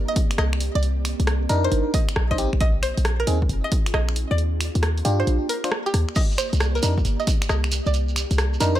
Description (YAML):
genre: UK garage, two-step garage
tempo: 135 BPM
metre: 4/4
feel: swing 66% on 16ths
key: C minor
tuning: A4 = 445 Hz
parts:
  - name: ethereal airy pad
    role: sustained chords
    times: 0.0-8.8 s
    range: Bb3 to D5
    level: -34 LUFS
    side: right 1 dB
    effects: ensemble chorus, built-in reverb, sidechain pumping
  - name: short 808-style bass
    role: bass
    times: 0.0-8.8 s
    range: F1 to G2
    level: -22 LUFS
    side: equal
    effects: tube saturation
  - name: string-like resonator pluck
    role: melody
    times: 0.1-8.8 s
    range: G4 to Eb5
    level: -28 LUFS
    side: right 1 dB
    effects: chorus, cassette tape, digital delay
  - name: electronic kick drum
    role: drums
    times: 0.2-7.4 s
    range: none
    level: -23 LUFS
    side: equal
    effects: none
  - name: punchy analog drum machine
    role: drums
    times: 0.2-8.7 s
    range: crash cymbal, finger snaps, hi-hat, rim click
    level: -28 LUFS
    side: equal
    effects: none
  - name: FM electric piano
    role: stabs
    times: 1.5-8.8 s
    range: C4 to C5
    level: -26 LUFS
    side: equal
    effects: chorus, digital delay
  - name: shekere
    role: percussion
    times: 6.2-8.8 s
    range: none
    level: -31 LUFS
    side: right 5 dB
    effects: none
room: digital ambience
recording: none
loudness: -20 LUFS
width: side -13 dB against mid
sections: 0.0-8.8 A section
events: kick drops out 5.3-6.2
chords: 0.0 Cm9; 2.4 Bb9sus4; 4.4 Ebmaj9; 6.2 Cm9